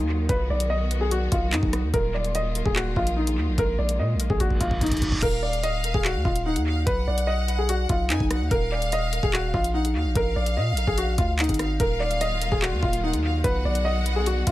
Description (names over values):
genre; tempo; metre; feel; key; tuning
hip hop, drill; 146 BPM; 4/4; half-time; Eb harmonic minor; A4 = 440 Hz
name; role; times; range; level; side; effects
warm upright piano; melody; 0.0-14.5 s; Eb4 to D#5; -26 LUFS; left 1 dB; analog delay
warm studio string section; sustained chords; 0.0-5.2, 11.8-14.5 s; Eb3 to F#4; -34 LUFS; right 1 dB; none
long sustained 808-style bass; bass; 0.0-14.5 s; D1 to Bb2; -26 LUFS; equal; none
drill drum kit; drums; 0.3-14.5 s; crash cymbal, handclaps, hi-hat, kick drum, rim click; -27 LUFS; equal; overdrive, analog delay
reverse cymbal; sound effects; 4.6-5.2 s; none; -33 LUFS; right 2 dB; none
rich studio violin section; second line; 5.2-14.5 s; F5 to Ab5; -31 LUFS; equal; analog delay
room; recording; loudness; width
small room ambience; echo-heavy mix; -21 LUFS; side -15 dB against mid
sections
0.0-5.2 A section; 5.2-14.5 B section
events
drum fill 4.4-5.2; reverse cymbal 4.6-5.2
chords
0.3 B; 1.9 Ebmadd9; 3.6 Bb7sus4; 5.2 Ebsus2; 6.9 B; 8.5 Ebsus2; 10.2 Bb7sus4; 11.8 Ebmadd9; 13.4 B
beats
| 0.29 0.70 1.11 1.52 | 1.94 2.35 2.76 3.17 | 3.58 3.99 4.40 4.81 | 5.22 5.63 6.05 6.46 | 6.87 7.28 7.69 8.10 | 8.51 8.92 9.33 9.74 | 10.15 10.57 10.98 11.39 | 11.80 12.21 12.62 13.03 | 13.44 13.85 14.27